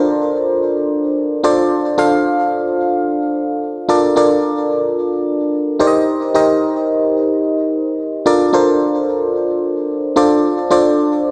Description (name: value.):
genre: pop.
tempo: 110 BPM.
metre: 4/4.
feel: straight.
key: Bb major.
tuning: A4 = 445 Hz.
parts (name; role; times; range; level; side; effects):
FM electric piano; solo; 0.0-11.3 s; D4 to F5; -16 LUFS; equal; chorus, delay.
room: moderate lush hall reverb, RT60 2.7 s.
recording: none.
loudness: -16 LUFS.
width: mono.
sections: 0.0-11.3 A section.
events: none.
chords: 0.0 Bbmaj7/D; 1.4 Dm7; 3.9 Bbmaj7; 5.8 Cm7; 8.3 Bbmaj7/D; 10.2 Dm7.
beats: 0.08 0.62 1.17 | 1.71 2.26 2.80 3.35 | 3.90 4.44 4.99 5.53 | 6.08 6.62 7.17 7.71 | 8.26 8.80 9.35 9.89 | 10.44 10.99.